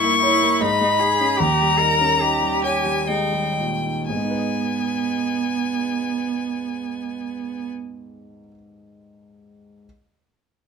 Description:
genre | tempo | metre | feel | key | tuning
classical, slow romantic movement for piano trio | 58-81 BPM | 3/4 | rubato | G# minor | A4 = 440 Hz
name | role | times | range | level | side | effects
clear violin | melody | 0.0-7.7 s | G5 to Db6 | -22 LUFS | left 6 dB | none
rich cello | second line | 0.0-7.7 s | B3 to A#4 | -24 LUFS | right 6 dB | none
dark concert grand piano | accompaniment | 0.0-9.9 s | D#2 to D#5 | -25 LUFS | right 1 dB | none
room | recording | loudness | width
light reverb | minimal, uncompressed stereo recording | -19 LUFS | side -6 dB against mid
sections
0.0-4.1 A section; 4.1-6.9 B section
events
slowing down 0.0-4.1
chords
0.0 Gdim7; 0.6 G#m; 1.4 D#7; 4.1 G#m

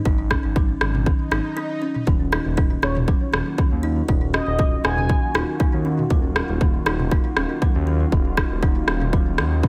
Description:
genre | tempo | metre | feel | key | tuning
afro house | 119 BPM | 4/4 | swing 54% on 16ths | Eb minor | A4 = 440 Hz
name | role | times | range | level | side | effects
kalimba | arpeggios | 0.1-9.7 s | Eb3 to Eb4 | -29 LUFS | equal | sidechain pumping, tape echo
smooth synth bass | bass | 0.1-9.7 s | Eb1 to Eb2 | -26 LUFS | equal | sidechain pumping
electronic kick drum | drums | 0.1-9.7 s | none | -22 LUFS | equal | none
afro-pop drum kit | drums | 0.3-9.5 s | rim click, toms | -27 LUFS | equal | analog delay
swell | sound effects | 1.2-2.1 s | none | -37 LUFS | equal | none
warm analog pad | sustained chords | 2.1-9.7 s | Eb3 to Gb4 | -34 LUFS | equal | lush chorus, sidechain pumping
expressive synth lead | melody | 2.8-5.3 s | Db5 to Ab5 | -30 LUFS | equal | analog chorus, tape echo
room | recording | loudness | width
light reverb, digital ambience | echo-heavy mix | -21 LUFS | mono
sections
0.0-9.7 A section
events
swell 1.2-2.1; break 1.6-2.1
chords
0.0 Ab5; 2.1 Ebm

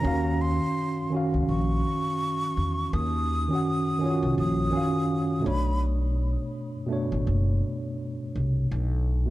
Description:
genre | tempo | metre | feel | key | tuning
lo-fi hip hop | 83 BPM | 4/4 | swing 58% on 16ths | unclear | A4 = 440 Hz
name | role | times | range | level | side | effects
breathy jazz flute | melody | 0.0-5.8 s | Bb5 to Eb6 | -31 LUFS | equal | plate reverb, tape echo
tine electric piano | accompaniment | 0.0-9.3 s | B2 to Gb5 | -27 LUFS | right 1 dB | overdrive, fast stereo tremolo, cassette tape
upright bass | bass | 0.0-9.2 s | F#1 to Fb2 | -26 LUFS | equal | none
room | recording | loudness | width
moderate studio reverb, RT60 0.6 s | dark, warm production | -24 LUFS | side -16 dB against mid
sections
0.0-9.3 A section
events
none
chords
0.0 Ebm9; 5.5 Bm9

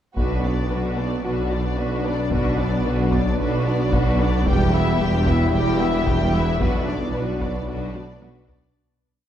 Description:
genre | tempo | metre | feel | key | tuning
cinematic, hybrid orchestral and electronic film score | 112 BPM | 4/4 | straight | B minor | A4 = 440 Hz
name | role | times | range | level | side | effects
warm symphonic violin section | melody | 0.2-8.8 s | B4 to G5 | -31 LUFS | left 3 dB | none
warm symphonic violin section | second line | 0.2-8.8 s | D4 to G4 | -29 LUFS | left 2 dB | none
rich symphonic viola section | accompaniment | 0.2-8.7 s | G3 to D4 | -30 LUFS | equal | none
dark French horn section | sustained chords | 0.2-8.4 s | F#3 to E4 | -30 LUFS | left 2 dB | none
granular cloud pad | sustained chords | 1.3-8.7 s | F#3 to B4 | -30 LUFS | equal | none
resonant blip pluck | arpeggios | 0.2-8.6 s | E3 to B4 | -32 LUFS | equal | none
mellow tuba | bass | 0.2-8.7 s | E1 to B1 | -28 LUFS | right 1 dB | none
warm symphonic cello section | bass | 0.2-8.7 s | E2 to B2 | -29 LUFS | right 2 dB | none
warm symphonic double bass section | bass | 0.2-8.7 s | E1 to B1 | -27 LUFS | right 1 dB | none
wide detuned saw bass | bass | 0.2-8.8 s | E1 to B1 | -28 LUFS | equal | chorus
taiko ensemble | drums | 0.2-8.7 s | none | -27 LUFS | equal | none
room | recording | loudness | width
wet scoring stage reverb, RT60 1.9 s | recorded in a church or concert hall | -19 LUFS | side -10 dB against mid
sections
0.2-8.8 theme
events
fade-out 6.6-8.8; drum fill 7.9-8.8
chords
0.2 Bm; 4.5 Em; 6.6 Bm

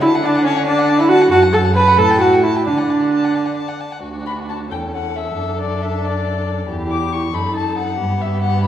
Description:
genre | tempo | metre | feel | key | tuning
quick classical-period movement for string quartet | 91 BPM (dotted quarters) | 6/8 | rubato | D major | A4 = 440 Hz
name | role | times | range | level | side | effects
dark violin | melody | 0.0-8.7 s | C#5 to D6 | -23 LUFS | left 7 dB | none
warm violin | second line | 0.0-8.7 s | F#4 to A5 | -26 LUFS | left 4 dB | none
warm viola | accompaniment | 0.0-8.7 s | B3 to B4 | -16 LUFS | right 2 dB | none
warm cello | bass | 0.0-8.7 s | D2 to D3 | -21 LUFS | right 2 dB | none
room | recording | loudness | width
wet recital hall reverb, RT60 1.4 s | heard from further back in the room | -14 LUFS | side -10 dB against mid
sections
0.0-4.0 A section; 4.0-8.7 B section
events
none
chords
0.0 D; 1.3 F#madd11; 2.0 F#m7/A; 2.7 D; 4.7 A/E; 5.4 D/F#; 6.7 Em; 7.3 F#m6; 8.0 Gmaj13

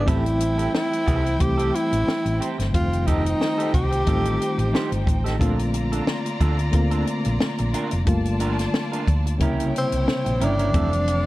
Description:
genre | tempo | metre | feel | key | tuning
lush 1970s-style soul | 90 BPM | 4/4 | swing 54% on 16ths | F major | A4 = 439 Hz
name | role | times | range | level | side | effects
breathy tenor saxophone | melody | 0.0-5.0, 9.8-11.3 s | C4 to G4 | -24 LUFS | equal | none
rich studio violin section | second line | 0.0-11.3 s | C4 to Bb5 | -32 LUFS | left 1 dB | none
reed electric piano | accompaniment | 0.0-11.3 s | C3 to F4 | -26 LUFS | left 1 dB | fast tremolo
electric guitar through a small old amp | riff | 0.0-11.1 s | C4 to C5 | -32 LUFS | right 5 dB | none
hollow-body short-scale fingered electric bass | bass | 0.0-11.3 s | F1 to D2 | -24 LUFS | equal | none
compact cocktail drum kit | drums | 0.1-11.2 s | hi-hat, kick drum, snare drum | -24 LUFS | equal | none
room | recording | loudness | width
light reverb, small room reverb | dark, warm production | -20 LUFS | side -17 dB against mid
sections
0.0-11.3 A section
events
none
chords
0.1 Am7; 2.7 F9; 5.4 Bbmaj7; 8.1 Gm7; 9.4 C7b9; 10.7 Fmaj7

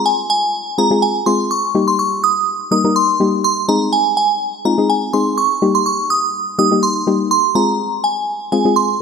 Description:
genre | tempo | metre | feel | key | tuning
dance-pop | 124 BPM | 4/4 | straight | unclear | A4 = 440 Hz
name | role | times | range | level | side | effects
glassy synth bell | melody | 0.0-9.0 s | Ab5 to Eb6 | -16 LUFS | right 2 dB | chorus, phaser
soft round pluck | accompaniment | 0.0-8.9 s | G3 to Bb4 | -17 LUFS | left 4 dB | chorus
room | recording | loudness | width
moderate lush hall reverb, RT60 2.5 s | none | -13 LUFS | side -6 dB against mid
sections
0.0-9.0 A section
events
none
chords
0.0 Fm; 1.5 Eb/G; 3.4 Ab; 5.4 Eb; 7.3 Fm

